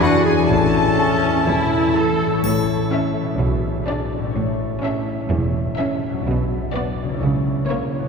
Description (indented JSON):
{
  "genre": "cinematic, playful, whimsical film cue",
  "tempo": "125 BPM",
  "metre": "4/4",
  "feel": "straight",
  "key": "A major",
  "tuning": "A4 = 440 Hz",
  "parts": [
    { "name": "warm studio violin section", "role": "melody", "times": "0.0-8.0 s", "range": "C#5 to B5", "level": "-31 LUFS", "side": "left 1 dB", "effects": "none" },
    { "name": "rich studio violin section", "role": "second line", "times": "0.0-8.0 s", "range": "E4 to A5", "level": "-27 LUFS", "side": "left 3 dB", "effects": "none" },
    { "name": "warm clarinet", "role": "second line", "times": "0.0-1.9 s", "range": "F#4 to A4", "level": "-23 LUFS", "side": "left 1 dB", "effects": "none" },
    { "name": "warm studio viola section", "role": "accompaniment", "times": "0.0-8.0 s", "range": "A#3 to A4", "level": "-25 LUFS", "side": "right 3 dB", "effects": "none" },
    { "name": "mellow French horn section", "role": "sustained chords", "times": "0.0-2.2 s", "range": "E3 to D4", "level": "-26 LUFS", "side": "equal", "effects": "none" },
    { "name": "concert harp", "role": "arpeggios", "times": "0.0-8.1 s", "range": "E2 to D5", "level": "-23 LUFS", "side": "left 5 dB", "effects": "none" },
    { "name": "rich studio cello section", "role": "bass", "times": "0.5-7.6 s", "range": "E2 to C#3", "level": "-25 LUFS", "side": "right 2 dB", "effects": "none" },
    { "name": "warm studio double bass section", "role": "bass", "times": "0.5-7.6 s", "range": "E1 to C#2", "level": "-27 LUFS", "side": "right 2 dB", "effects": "none" },
    { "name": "triangle", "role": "percussion", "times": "2.4-3.4 s", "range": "none", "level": "-36 LUFS", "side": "left 2 dB", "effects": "none" }
  ],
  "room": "wet cathedral reverb, RT60 5.4 s",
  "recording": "recorded in a church or concert hall",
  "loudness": "-17 LUFS",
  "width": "side -5 dB against mid",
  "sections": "0.0-2.4 A section; 2.4-8.1 B section",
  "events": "none",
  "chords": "0.5 A; 3.4 G#dim/B; 4.4 A; 6.3 Bm; 7.2 A#dim/C#",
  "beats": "0.01 | 0.49 0.98 1.47 1.95 | 2.44 2.92 3.40 3.88 | 4.35 4.83 5.31 5.79 | 6.27 6.74 7.22 7.69"
}